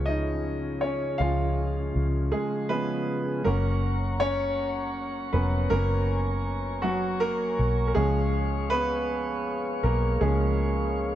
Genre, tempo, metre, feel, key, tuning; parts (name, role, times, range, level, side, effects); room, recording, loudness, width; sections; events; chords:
six-eight pop ballad; 53 BPM (dotted quarters); 6/8; straight; F# major; A4 = 440 Hz
clear concert grand piano; accompaniment; 0.0-11.2 s; E#3 to E#5; -27 LUFS; right 1 dB
mellow tonewheel organ; sustained chords; 0.0-11.2 s; C#3 to C#6; -33 LUFS; left 2 dB; slow rotary speaker
vintage muted fingered electric bass; bass; 0.0-11.2 s; E#1 to C#2; -27 LUFS; equal
light reverb, small room reverb; dark, warm production; -24 LUFS; side -12 dB against mid
0.0-3.5 A section; 3.5-11.2 B section
grand piano solo 0.0-3.5, 3.5-11.2
0.0 C#; 3.5 F#; 8.0 C#